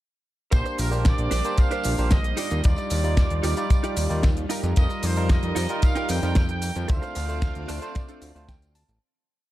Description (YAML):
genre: nu-disco, nu disco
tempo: 113 BPM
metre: 4/4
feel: straight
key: Bb major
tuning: A4 = 442 Hz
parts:
  - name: bright trumpet section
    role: melody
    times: 0.5-7.9 s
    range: Bb4 to G5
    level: -32 LUFS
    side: right 2 dB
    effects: analog delay
  - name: barky tine electric piano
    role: accompaniment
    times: 0.5-8.5 s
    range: G3 to D5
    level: -32 LUFS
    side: right 1 dB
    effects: overdrive, sidechain pumping
  - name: string machine, full ensemble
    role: sustained chords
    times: 0.7-9.0 s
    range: G3 to D5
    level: -34 LUFS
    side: equal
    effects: phaser, ensemble chorus, sidechain pumping
  - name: direct-recorded clean electric guitar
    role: riff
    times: 0.5-9.0 s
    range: D4 to A5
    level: -33 LUFS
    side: right 3 dB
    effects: analog chorus
  - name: fat analog bass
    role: bass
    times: 0.5-9.0 s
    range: A1 to F2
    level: -26 LUFS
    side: equal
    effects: none
  - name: kick drum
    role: drums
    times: 0.5-8.6 s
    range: none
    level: -20 LUFS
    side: equal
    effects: none
  - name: pop drum kit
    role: drums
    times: 0.5-9.0 s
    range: cabasa, hi-hat, snare drum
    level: -32 LUFS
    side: equal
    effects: none
  - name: tambourine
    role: percussion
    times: 0.5-9.0 s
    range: none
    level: -42 LUFS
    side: left 1 dB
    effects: none
room: little or no reverb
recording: dark, warm production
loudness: -21 LUFS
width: side -15 dB against mid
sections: 0.5-9.0 drop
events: drop 0.5-9.0; fade-out 6.2-9.0; clean electric guitar fill 7.4-9.0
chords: 0.5 Bb69; 2.4 Ebmaj9; 4.5 F9sus4; 6.9 Dm7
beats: | 0.52 1.05 1.58 2.11 | 2.65 3.18 3.71 4.24 | 4.77 5.30 5.83 6.36 | 6.89 7.42 7.96 8.49